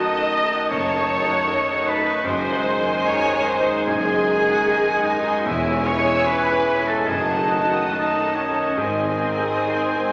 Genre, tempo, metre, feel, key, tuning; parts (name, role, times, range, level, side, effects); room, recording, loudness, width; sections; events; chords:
classical, romantic movement for piano and orchestra; 67-77 BPM; 4/4; rubato; A4 = 440 Hz
muted symphonic violin section; melody; 0.0-10.1 s; G#5 to A5; -38 LUFS; equal
warm grand piano; melody; 0.0-10.1 s; E2 to D#5; -30 LUFS; equal
bright silver concert flute; second line; 0.0-10.1 s; G#5 to A5; -29 LUFS; equal
dark clarinet; second line; 0.0-10.1 s; C#5 to D#5; -36 LUFS; equal
muted symphonic violin section; second line; 0.0-10.1 s; C#5 to E6; -35 LUFS; equal
warm oboe; second line; 0.0-10.1 s; B#4 to D#6; -29 LUFS; equal
muted symphonic viola section; accompaniment; 0.0-10.1 s; B#3 to D#5; -26 LUFS; equal
warm bassoon; accompaniment; 0.0-10.1 s; D#3 to E3; -33 LUFS; equal
warm French horn section; sustained chords; 0.0-10.1 s; G#3 to D#4; -34 LUFS; equal
warm trombone section; sustained chords; 0.0-10.1 s; F#2 to E3; -38 LUFS; equal
mellow trumpet section; stabs; 0.0-10.1 s; D#5 to G#5; -32 LUFS; equal
muted chamber double bass section; bass; 0.7-9.5 s; E1 to G#1; -40 LUFS; equal
muted symphonic cello section; bass; 0.7-9.5 s; E2 to G#2; -39 LUFS; equal
warm tuba; bass; 0.7-9.5 s; E1 to G#1; -37 LUFS; equal
wet scoring stage reverb, RT60 2.0 s; -21 LUFS; mono
0.0-10.1 A section
0.0 D#m7b5/F#; 2.3 G#7/F#; 5.5 C#m/E; 7.1 D#dim/F#; 8.8 G#